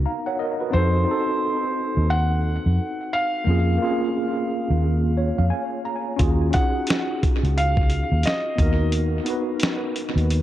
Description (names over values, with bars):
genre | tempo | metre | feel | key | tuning
lo-fi hip hop | 88 BPM | 4/4 | swing 62% on 16ths | Eb minor | A4 = 439 Hz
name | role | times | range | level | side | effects
tine electric piano | accompaniment | 0.0-10.4 s | Bb3 to Bb5 | -25 LUFS | equal | overdrive, fast stereo tremolo, cassette tape, low-pass filter, tape echo
vintage muted fingered electric bass | bass | 0.0-10.4 s | Db2 to F2 | -20 LUFS | equal | none
felt-muted upright piano | melody | 0.7-8.9 s | C5 to Gb5 | -27 LUFS | equal | low-pass filter, tape echo
dusty soul sampler-style drum kit | drums | 6.2-10.4 s | hi-hat, kick drum, snare drum | -23 LUFS | equal | tape echo
room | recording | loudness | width
light reverb | echo-heavy mix, cassette tape | -20 LUFS | side -13 dB against mid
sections
0.0-10.4 A section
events
tine electric piano fill 4.8-6.2; break 8.9-10.4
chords
0.0 Db13sus4; 0.7 F7b9; 3.5 Bbm7; 6.2 Ebm11; 8.6 Db9sus4 (rootless)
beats
0.06 | 0.74 1.42 2.10 2.79 | 3.47 4.15 4.83 5.51 | 6.20 6.88 7.56 8.24 | 8.92 9.61 10.29